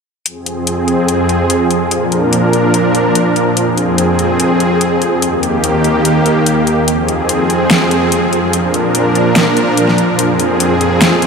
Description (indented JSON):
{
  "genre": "heavy wobble dubstep",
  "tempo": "145 BPM",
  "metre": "4/4",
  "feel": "half-time",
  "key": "F dorian",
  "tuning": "A4 = 440 Hz",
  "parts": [
    { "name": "supersaw pad", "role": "sustained chords", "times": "0.3-11.3 s", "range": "Eb2 to Bb4", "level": "-11 LUFS", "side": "equal", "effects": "low-pass filter" },
    { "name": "dubstep drum kit", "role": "drums", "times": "0.3-11.3 s", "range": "hi-hat, snare drum", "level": "-16 LUFS", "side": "left 1 dB", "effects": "overdrive, small room ambience" }
  ],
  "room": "wet huge ambient reverb, RT60 6.4 s",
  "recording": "dreamy mix soaked in reverb",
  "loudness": "-10 LUFS",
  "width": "side -5 dB against mid",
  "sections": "0.3-11.3 A section",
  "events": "filter sweep on supersaw synth 0.3-11.3",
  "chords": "0.3 Fm; 1.9 Bb; 3.6 Fm; 5.2 Eb; 6.9 Fm; 8.5 Bb; 10.2 Fm",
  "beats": "| 0.26 0.67 1.08 1.50 | 1.91 2.33 2.74 3.15 | 3.57 3.98 4.39 4.81 | 5.22 5.64 6.05 6.46 | 6.88 7.29 7.71 8.12 | 8.53 8.95 9.36 9.78 | 10.19 10.60 11.02"
}